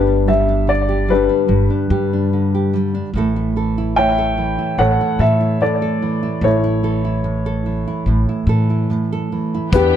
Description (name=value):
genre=folk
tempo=73 BPM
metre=4/4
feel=straight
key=unclear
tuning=A4 = 440 Hz
part: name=dark upright piano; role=melody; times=0.0-10.0 s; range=D4 to G5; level=-18 LUFS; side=left 3 dB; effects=slapback echo
part: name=nylon-string guitar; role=accompaniment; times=0.0-10.0 s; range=G2 to A4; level=-20 LUFS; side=right 4 dB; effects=none
part: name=upright bass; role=bass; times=0.0-9.9 s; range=G1 to A2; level=-19 LUFS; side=left 1 dB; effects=none
part: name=rich studio string section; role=sustained chords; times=9.7-10.0 s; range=E3 to G4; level=-23 LUFS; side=left 2 dB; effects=none
part: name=soft brush drum kit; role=drums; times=9.7-9.9 s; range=hi-hat, kick drum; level=-20 LUFS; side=left 1 dB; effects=none
room=little or no reverb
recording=dark, warm production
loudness=-15 LUFS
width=side -10 dB against mid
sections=0.0-9.7 A section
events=none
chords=0.0 G; 3.1 A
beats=0.67 1.50 2.32 | 3.14 3.96 4.78 5.60 | 6.42 7.25 8.07 8.90 | 9.73